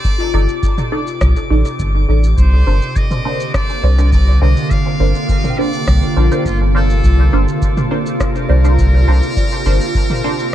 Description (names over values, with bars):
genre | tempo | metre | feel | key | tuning
ambient dub | 103 BPM | 4/4 | straight | unclear | A4 = 436 Hz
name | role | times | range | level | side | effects
trumpet with metal mute | melody | 0.0-10.5 s | F4 to F5 | -25 LUFS | equal | dub echo
soft additive organ-like pad | sustained chords | 0.0-10.5 s | C3 to F4 | -21 LUFS | right 1 dB | ensemble chorus, built-in reverb, vintage 12-bit sampler grit
soft synth bell | arpeggios | 0.0-10.5 s | F4 to D6 | -27 LUFS | left 7 dB | chorus, phaser, dub echo
electronic kick drum | drums | 0.0-10.1 s | none | -18 LUFS | equal | none
organic electronic drum kit | drums | 0.0-10.5 s | rim click, shaker, toms | -24 LUFS | right 1 dB | dub echo
drifting glass-harmonics texture | texture | 0.0-10.5 s | D6 | -33 LUFS | equal | chorus, built-in reverb
filtered dub chord stab | stabs | 0.3-10.4 s | D4 to D5 | -23 LUFS | right 2 dB | phaser, ensemble chorus, dub echo
soft dub sub bass | bass | 0.3-9.8 s | G1 to C2 | -12 LUFS | equal | tube saturation
room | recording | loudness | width
digital ambience | dark, warm production | -12 LUFS | side -12 dB against mid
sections
0.0-10.5 A section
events
none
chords
0.0 Cm69; 2.4 Bbadd9